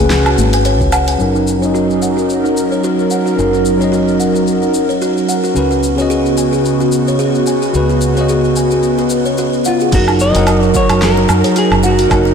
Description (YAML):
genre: sunset chillout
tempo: 110 BPM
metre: 4/4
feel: swing 56% on 16ths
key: F# major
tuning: A4 = 438 Hz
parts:
  - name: bell-like tine electric piano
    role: accompaniment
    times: 0.0-12.3 s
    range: C#3 to F#5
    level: -16 LUFS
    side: equal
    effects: auto-pan, low-pass filter, tape echo
  - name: buzzing kalimba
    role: arpeggios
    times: 0.0-12.3 s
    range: D#4 to G#5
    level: -18 LUFS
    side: right 1 dB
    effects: low-pass filter, tape echo
  - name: fingered electric bass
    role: bass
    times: 0.0-12.3 s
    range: F#1 to F#2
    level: -18 LUFS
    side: equal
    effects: none
  - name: congas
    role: percussion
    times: 0.0-0.5 s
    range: none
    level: -23 LUFS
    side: left 6 dB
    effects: none
  - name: deep house drum kit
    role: drums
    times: 0.1-12.3 s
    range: crash cymbal, hi-hat, shaker, snare drum, woodblock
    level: -22 LUFS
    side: right 1 dB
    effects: none
  - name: electronic kick drum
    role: drums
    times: 0.8-0.9, 9.9-12.2 s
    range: none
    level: -19 LUFS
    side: equal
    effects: none
  - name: airy breathy pad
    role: sustained chords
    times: 1.6-12.3 s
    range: C#3 to A#4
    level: -17 LUFS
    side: equal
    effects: chorus
  - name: semi-hollow electric guitar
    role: melody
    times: 9.7-12.3 s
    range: E#4 to D#5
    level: -17 LUFS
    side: equal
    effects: tape echo
room: moderate lush hall reverb, RT60 2.7 s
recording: blown-out, overdriven recording, overdrive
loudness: -11 LUFS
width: side -6 dB against mid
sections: 0.0-1.2 A section; 1.2-9.9 B section; 9.9-12.3 A section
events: filter sweep on tine electric piano 1.2-9.9; filter sweep on kalimba 1.2-9.9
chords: 0.0 C#7sus4; 1.2 F#6; 5.6 C#7sus4; 9.9 F#6